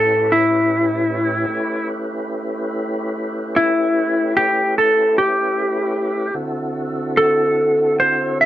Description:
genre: blues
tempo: 49 BPM (dotted quarters)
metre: 12/8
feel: straight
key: A mixolydian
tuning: A4 = 440 Hz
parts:
  - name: clean lap steel guitar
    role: melody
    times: 0.0-8.5 s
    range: E4 to E5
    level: -15 LUFS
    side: equal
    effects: none
  - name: tonewheel organ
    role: sustained chords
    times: 0.0-8.5 s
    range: A2 to B4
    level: -23 LUFS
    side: equal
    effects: slow rotary speaker, chorus vibrato
room: wet studio reverb, RT60 0.5 s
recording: band playing live in one room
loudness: -16 LUFS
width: side -13 dB against mid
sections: 0.0-8.5 A section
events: electric slide guitar solo 0.0-8.5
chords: 0.0 A9; 6.4 D9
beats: 0.28 | 1.50 2.71 3.92 5.14 | 6.35 7.57

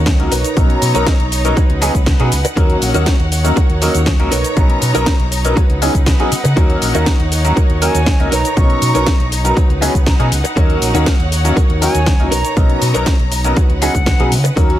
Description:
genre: filtered disco house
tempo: 120 BPM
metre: 4/4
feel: straight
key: Eb minor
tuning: A4 = 440 Hz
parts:
  - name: clear studio string section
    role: sustained chords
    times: 0.0-14.8 s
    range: D#4 to A#5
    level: -23 LUFS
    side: equal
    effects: sidechain pumping
  - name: overdriven fingered electric bass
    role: bass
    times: 0.0-14.7 s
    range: Bb1 to Db3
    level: -17 LUFS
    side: equal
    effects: sidechain pumping
  - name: electronic kick drum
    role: drums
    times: 0.1-14.7 s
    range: none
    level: -13 LUFS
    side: equal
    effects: none
  - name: house drum kit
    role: drums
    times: 0.1-14.8 s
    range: cabasa, hi-hat, snare drum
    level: -21 LUFS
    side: equal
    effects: sidechain pumping on perc, sidechain pumping on hats
  - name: bright concert grand piano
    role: accompaniment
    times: 0.2-14.8 s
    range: Gb3 to A#5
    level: -20 LUFS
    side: left 1 dB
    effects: phaser, sidechain pumping
  - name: direct-recorded clean electric guitar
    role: riff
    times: 0.3-14.8 s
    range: D#4 to Eb5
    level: -22 LUFS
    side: right 1 dB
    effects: ensemble chorus, sidechain pumping
  - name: silver concert flute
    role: melody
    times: 7.8-14.3 s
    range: Gb5 to C#6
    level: -23 LUFS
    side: right 1 dB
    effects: vintage 12-bit sampler grit, sidechain pumping, ping-pong delay
room: little or no reverb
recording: none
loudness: -11 LUFS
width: side -12 dB against mid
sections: 0.0-14.8 A section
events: none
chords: 0.3 Bmaj9; 1.6 Db9sus4; 2.6 Ebm7; 4.3 Bmaj9; 5.6 Db9sus4; 6.6 Ebm7; 8.3 Bmaj9; 9.6 Db9sus4; 10.6 Ebm7; 12.3 Bmaj9; 13.6 Db9sus4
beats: 0.07 | 0.57 1.07 1.57 2.07 | 2.57 3.07 3.57 4.07 | 4.57 5.07 5.57 6.07 | 6.57 7.07 7.57 8.07 | 8.57 9.07 9.57 10.07 | 10.57 11.07 11.57 12.07 | 12.57 13.07 13.57 14.07 | 14.57

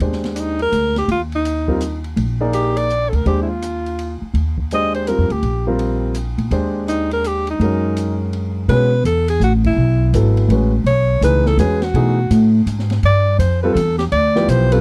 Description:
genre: modal jazz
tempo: 166 BPM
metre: 3/4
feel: swing 64% on 8ths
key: Eb major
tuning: A4 = 440 Hz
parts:
  - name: warm baby grand piano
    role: accompaniment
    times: 0.0-14.8 s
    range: E3 to D5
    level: -24 LUFS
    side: equal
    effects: none
  - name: upright bass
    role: bass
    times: 0.0-14.8 s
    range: G#1 to B2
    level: -20 LUFS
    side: equal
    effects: none
  - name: open jazz drum kit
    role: drums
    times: 0.0-14.8 s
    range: hi-hat, kick drum, ride cymbal, snare drum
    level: -34 LUFS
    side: equal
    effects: none
  - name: breathy alto saxophone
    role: melody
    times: 0.3-14.8 s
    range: D4 to Eb5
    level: -22 LUFS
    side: equal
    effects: none
room: little or no reverb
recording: dry, close 1970s-style studio recording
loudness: -17 LUFS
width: mono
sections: 0.0-8.7 A section; 8.7-14.8 B section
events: band accent 9.6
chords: 0.0 Ebmaj7; 7.6 Gb69; 8.7 B13sus4; 13.0 G7sus4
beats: | 0.00 0.36 0.72 | 1.08 1.45 1.81 | 2.17 2.53 2.89 | 3.25 3.62 3.98 | 4.34 4.70 5.06 | 5.43 5.79 6.15 | 6.51 6.87 7.24 | 7.60 7.96 8.32 | 8.69 9.05 9.41 | 9.77 10.13 10.50 | 10.86 11.22 11.58 | 11.95 12.31 12.67 | 13.03 13.39 13.76 | 14.12 14.48

